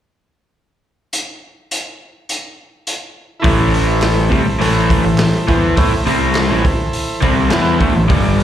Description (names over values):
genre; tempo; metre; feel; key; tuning
garage rock duo or trio; 103 BPM; 4/4; straight; A minor; A4 = 444 Hz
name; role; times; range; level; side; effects
raw garage drum kit; drums; 1.1-8.4 s; hi-hat, kick drum, snare drum; -18 LUFS; equal; none
combo organ; sustained chords; 3.4-8.4 s; D4 to D5; -22 LUFS; right 1 dB; none
crunchy overdriven guitar; riff; 3.4-8.4 s; G2 to E4; -16 LUFS; equal; slapback echo
fuzz picked electric bass; bass; 3.4-8.4 s; G1 to A2; -18 LUFS; equal; overdrive
group handclap; percussion; 4.0-7.6 s; none; -29 LUFS; right 2 dB; none
room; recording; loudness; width
little or no reverb; live gig heard through the venue's PA, recital hall reverb; -13 LUFS; side -10 dB against mid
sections
1.1-3.4 A section; 3.4-8.4 B section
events
none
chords
1.1 N.C.; 3.4 Am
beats
| 1.11 1.70 2.28 2.86 | 3.44 4.02 4.60 5.18 | 5.77 6.35 6.93 7.51 | 8.09